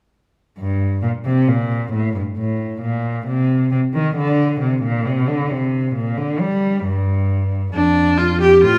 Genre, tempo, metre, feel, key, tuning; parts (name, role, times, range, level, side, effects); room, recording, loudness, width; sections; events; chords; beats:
classical, baroque-style fugue for string quartet; 67 BPM; 4/4; straight; G minor; A4 = 440 Hz
rich cello; bass; 0.6-8.8 s; F2 to G3; -20 LUFS; equal
clear viola; accompaniment; 7.7-8.8 s; D4 to G4; -14 LUFS; equal
wet recital hall reverb, RT60 1.6 s; -19 LUFS; mono
0.6-8.8 A section
0.6 Gm; 2.4 Adim; 4.2 Bbadd9; 6.0 Gm/Bb; 7.7 Dm/F
| 0.58 1.48 2.38 3.28 | 4.17 5.06 5.95 6.84 | 7.74 8.63